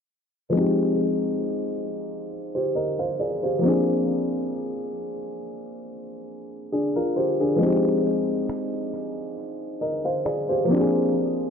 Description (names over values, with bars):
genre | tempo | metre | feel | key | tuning
contemporary R&B | 68 BPM | 4/4 | swing 54% on 16ths | F dorian | A4 = 439 Hz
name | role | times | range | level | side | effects
clear grand piano | accompaniment | 0.5-11.5 s | F3 to F5 | -22 LUFS | left 1 dB | analog delay
electronic finger snaps | drums | 8.5-10.5 s | none | -44 LUFS | right 1 dB | analog delay
room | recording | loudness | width
moderate echo chamber reverb, RT60 2.5 s | echo-heavy mix, low-pass filter | -22 LUFS | side -7 dB against mid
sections
0.5-11.5 A section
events
filter sweep 0.5-11.5; break 11.1-11.5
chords
0.5 Fm9; 3.6 Bb9; 7.6 Fm9; 10.7 Bb9